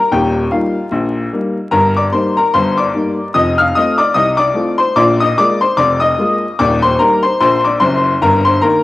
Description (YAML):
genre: ragtime piano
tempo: 74 BPM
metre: 2/4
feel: swing 56% on 16ths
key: Eb major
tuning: A4 = 439 Hz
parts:
  - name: warm upright piano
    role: solo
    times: 0.0-8.8 s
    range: Eb1 to F6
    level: -11 LUFS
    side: left 2 dB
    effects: cassette tape
room: wet spring reverb, RT60 2.5 s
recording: home recording on cassette, vinyl crackle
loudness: -11 LUFS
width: side -16 dB against mid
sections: 0.0-8.8 A section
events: none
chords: 0.0 Eb; 1.7 Eb/G; 3.4 F7; 5.0 Bb7; 6.6 Eb; 8.2 Eb/G